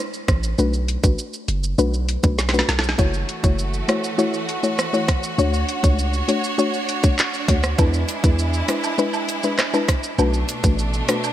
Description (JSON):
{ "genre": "dancehall", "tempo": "100 BPM", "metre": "4/4", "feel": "straight", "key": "F# minor", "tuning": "A4 = 440 Hz", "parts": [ { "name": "island pop drum kit", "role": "drums", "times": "0.1-11.3 s", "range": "handclaps, hi-hat, kick drum, rim click, shaker, snare drum", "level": "-21 LUFS", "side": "right 1 dB", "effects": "none" }, { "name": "hard-hitting 808-style bass", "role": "bass", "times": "0.3-11.0 s", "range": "F#1 to E2", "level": "-22 LUFS", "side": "equal", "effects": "none" }, { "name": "soft round pluck", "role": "accompaniment", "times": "0.6-11.3 s", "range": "G#3 to C#5", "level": "-23 LUFS", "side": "left 3 dB", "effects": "chorus" }, { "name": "bright studio string section", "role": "sustained chords", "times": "3.0-11.3 s", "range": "B2 to C#5", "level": "-26 LUFS", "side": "right 2 dB", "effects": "sidechain pumping" }, { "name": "woodblock and cabasa", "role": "percussion", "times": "7.8-11.3 s", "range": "none", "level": "-32 LUFS", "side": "right 11 dB", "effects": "none" } ], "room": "light reverb", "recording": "bright 1980s-style digital production", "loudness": "-18 LUFS", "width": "side -12 dB against mid", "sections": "0.0-3.0 A section; 3.0-11.3 B section", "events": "drum fill 2.4-3.0", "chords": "0.0 N.C.; 0.6 Bm7; 3.0 F#m7; 5.4 Dmaj7; 7.8 E7; 10.2 Bm7" }